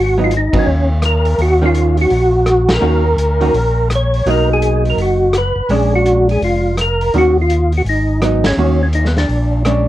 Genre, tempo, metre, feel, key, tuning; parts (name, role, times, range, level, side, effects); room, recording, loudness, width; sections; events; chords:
soul jazz organ trio; 167 BPM; 4/4; swing 64% on 8ths; Eb minor; A4 = 439 Hz
percussive tonewheel organ; melody; 0.0-9.6 s; Cb4 to Db5; -15 LUFS; equal; slow rotary speaker, chorus vibrato
tonewheel organ; bass; 0.0-9.9 s; F1 to Eb2; -16 LUFS; equal; overdrive, stopped rotary speaker
vintage hollow-body jazz guitar; accompaniment; 0.2-9.9 s; Eb3 to Gb4; -17 LUFS; right 2 dB
vintage drum kit; drums; 0.3-9.8 s; hi-hat, kick drum, ride cymbal, rim click, snare drum; -23 LUFS; equal
light reverb; worn, warbling old tape, cassette tape, warbly pitch drift; -12 LUFS; side -14 dB against mid
0.0-9.9 A section
band accent 0.5, 2.6, 8.4
0.0 Abm7; 1.4 Ebm7; 4.3 Bmaj7; 5.7 Bb7#9; 7.1 Ebm7; 7.9 Abm7; 8.6 Ebm7; 9.3 Bb7#9